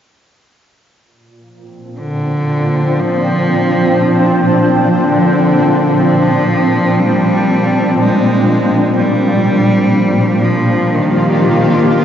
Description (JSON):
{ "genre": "ambient", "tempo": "free time", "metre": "none", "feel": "none", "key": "Bb mixolydian", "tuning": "A4 = 440 Hz", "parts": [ { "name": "shimmering ambient pad", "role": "sustained chords", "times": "1.9-12.0 s", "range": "Bb2 to G4", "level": "-12 LUFS", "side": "equal", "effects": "chorus, built-in reverb, shimmer reverb" }, { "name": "rich cello", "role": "melody", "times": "2.0-12.0 s", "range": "D3 to Ab3", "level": "-15 LUFS", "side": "right 1 dB", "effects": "analog delay" } ], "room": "wet cathedral reverb, RT60 6.2 s", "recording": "dreamy mix soaked in reverb, nothing above 7.5 kHz", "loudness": "-10 LUFS", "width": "side -9 dB against mid", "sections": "1.0-12.0 A section", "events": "none", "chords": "1.0 Bb; 9.0 Ebmaj9/Bb", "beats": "free time" }